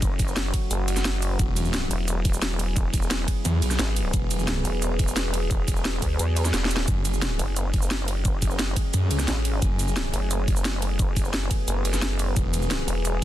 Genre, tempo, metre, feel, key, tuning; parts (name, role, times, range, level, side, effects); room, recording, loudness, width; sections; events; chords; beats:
dark technical drum and bass; 175 BPM; 4/4; straight; F# minor; A4 = 440 Hz
metallic inharmonic drone; sustained chords; 0.0-13.2 s; F#3 to G#4; -32 LUFS; left 1 dB; chorus, built-in reverb, sidechain pumping
vowel-sweep wobble bass; bass; 0.0-13.2 s; E1 to E2; -26 LUFS; equal; chorus
drum and bass drum kit; drums; 0.0-13.1 s; cabasa, hi-hat, ride cymbal, snare drum; -29 LUFS; right 1 dB; overdrive
electronic kick drum; drums; 0.0-12.4 s; -24 LUFS; equal; overdrive
snarling distorted saw bass; bass; 1.4-4.6, 6.9-10.1, 12.4-12.9 s; E1 to F#2; -25 LUFS; equal; distortion, overdrive, sidechain pumping
little or no reverb; dense, heavily limited modern master, lossy compression artefacts; -22 LUFS; side -13 dB against mid
0.0-13.2 A section
drum fill 6.5-6.9
0.0 F#m; 1.4 Eadd9; 6.9 F#madd9; 12.4 Eadd9
| 0.02 0.36 0.71 1.05 | 1.39 1.74 2.08 2.42 | 2.77 3.11 3.45 3.79 | 4.14 4.48 4.82 5.17 | 5.51 5.85 6.19 6.54 | 6.88 7.22 7.57 7.91 | 8.25 8.59 8.94 9.28 | 9.62 9.96 10.31 10.65 | 10.99 11.34 11.68 12.02 | 12.37 12.71 13.05